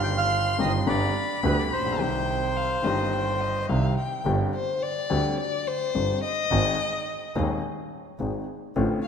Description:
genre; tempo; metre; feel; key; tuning
tango; 106 BPM; 4/4; rubato; unclear; A4 = 439 Hz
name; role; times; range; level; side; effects
bandoneon; melody; 0.0-3.7 s; B4 to G5; -28 LUFS; right 1 dB; none
warm violin; second line; 0.0-9.1 s; C5 to C6; -29 LUFS; left 5 dB; none
warm upright piano; accompaniment; 0.0-9.0 s; Eb1 to Ab4; -28 LUFS; left 3 dB; none
clear double bass; bass; 0.0-9.0 s; G1 to Eb2; -28 LUFS; right 4 dB; none
room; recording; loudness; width
moderate concert hall reverb, RT60 2.4 s; minimal, uncompressed stereo recording; -23 LUFS; side -7 dB against mid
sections
0.0-4.3 A section; 4.3-9.1 B section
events
violin solo 4.3-9.1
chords
0.0 Cm/G; 0.9 G; 2.0 Cm; 4.3 Gsus4; 6.5 Ab

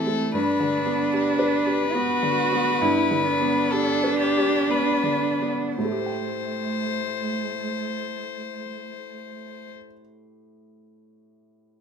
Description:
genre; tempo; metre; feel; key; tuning
neoclassical piano and strings; 54-78 BPM; 3/4; rubato; A dorian; A4 = 437 Hz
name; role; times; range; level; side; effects
rich violin; melody; 0.0-9.7 s; G4 to C5; -27 LUFS; left 6 dB; none
dark cello; second line; 0.0-9.7 s; A3 to F#4; -26 LUFS; right 4 dB; none
felt-muted upright piano; accompaniment; 0.0-11.8 s; G2 to G5; -27 LUFS; left 1 dB; none
room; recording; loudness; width
light reverb; minimal, uncompressed stereo recording; -21 LUFS; side -6 dB against mid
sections
0.0-5.8 A section; 5.8-9.0 B section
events
slowing down 0.0-5.8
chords
0.3 G; 5.8 Am7

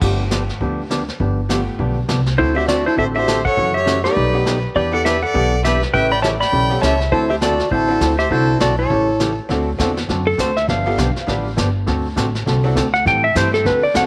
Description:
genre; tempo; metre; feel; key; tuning
country, western swing; 202 BPM; 4/4; swing 60% on 8ths; D mixolydian; A4 = 437 Hz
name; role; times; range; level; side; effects
hollow-body jazz guitar; accompaniment; 0.0-14.1 s; B2 to A4; -25 LUFS; equal; none
tack piano; accompaniment; 0.0-13.7 s; A3 to B4; -29 LUFS; equal; none
upright bass; bass; 0.0-14.1 s; G1 to A2; -24 LUFS; equal; none
vintage brush drum kit; drums; 0.0-14.1 s; brushed snare drum, crash cymbal, hi-hat, kick drum, snare drum; -28 LUFS; equal; none
clean lap steel guitar; melody; 2.4-14.1 s; E4 to B5; -20 LUFS; equal; none
clear fiddle; second line; 2.4-9.3 s; A4 to G5; -25 LUFS; equal; none
room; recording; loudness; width
moderate plate reverb, RT60 2.0 s; none; -18 LUFS; mono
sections
0.0-9.5 A section; 9.5-14.1 B section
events
electric slide guitar solo 9.5-14.1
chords
0.0 G9; 2.4 D9; 3.6 F#m7; 4.2 B7alt; 4.8 Em7; 5.9 A9; 7.1 D9; 8.9 A7; 9.5 D9; 10.7 G9; 11.9 D7; 13.1 Am7

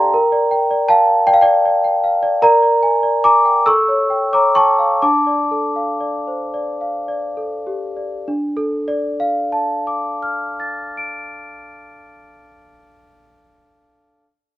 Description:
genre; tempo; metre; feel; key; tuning
classical, lullaby for celesta; 32-53 BPM (dotted quarters); 6/8; straight; D minor; A4 = 438 Hz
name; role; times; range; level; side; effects
large celesta; solo; 0.0-14.3 s; D4 to D7; -14 LUFS; equal; none
room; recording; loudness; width
light reverb; none; -14 LUFS; side -16 dB against mid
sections
0.0-8.3 A section; 8.3-12.0 B section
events
slowing down 1.3-8.3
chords
0.1 Gm/Bb; 2.4 Bb7; 3.7 A7; 5.0 Dm

